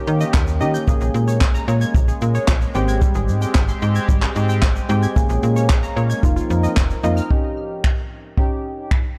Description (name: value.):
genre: dance-pop.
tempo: 112 BPM.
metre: 4/4.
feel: straight.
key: Bb dorian.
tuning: A4 = 437 Hz.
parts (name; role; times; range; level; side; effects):
sweeping resonant pad; sustained chords; 0.0-7.3 s; Eb3 to Bb4; -29 LUFS; equal; chorus, sidechain pumping.
glassy wavetable pluck; arpeggios; 0.0-7.3 s; Db3 to Ab6; -32 LUFS; equal; chorus, sidechain pumping, tape echo.
slap-like FM bass; bass; 0.1-7.2 s; F1 to Eb3; -22 LUFS; equal; sidechain pumping.
jazz brush drum kit; drums; 0.1-9.0 s; finger snaps, handclaps, hi-hat, kick drum, shaker, snare drum; -21 LUFS; equal; none.
deep mellow chord stab; accompaniment; 0.6-9.0 s; Ab3 to Ab4; -27 LUFS; equal; chorus, sidechain pumping.
room: light reverb, small room ambience.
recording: dark, warm production.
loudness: -19 LUFS.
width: mono.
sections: 0.0-7.3 A section; 7.3-9.2 B section.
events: none.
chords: 0.0 Eb7; 0.9 Bbm7; 2.8 Abmaj7; 5.2 Bbm7; 6.2 F7sus4; 7.3 Eb7.